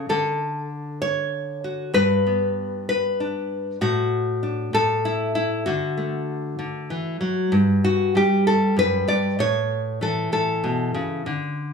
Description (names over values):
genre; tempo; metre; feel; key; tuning
folk, solo fingerstyle acoustic guitar; 64 BPM (dotted quarters); 6/8; straight; D major; A4 = 440 Hz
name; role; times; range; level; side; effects
nylon-string guitar; solo; 0.0-11.7 s; F#2 to D5; -20 LUFS; left 1 dB; none
room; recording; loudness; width
light reverb; studio ambience; -20 LUFS; side -5 dB against mid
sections
0.0-7.5 A section; 7.5-11.7 B section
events
none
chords
0.1 D; 1.9 G; 3.8 D/A; 4.7 N.C.; 5.7 Dadd9; 7.5 G; 9.4 A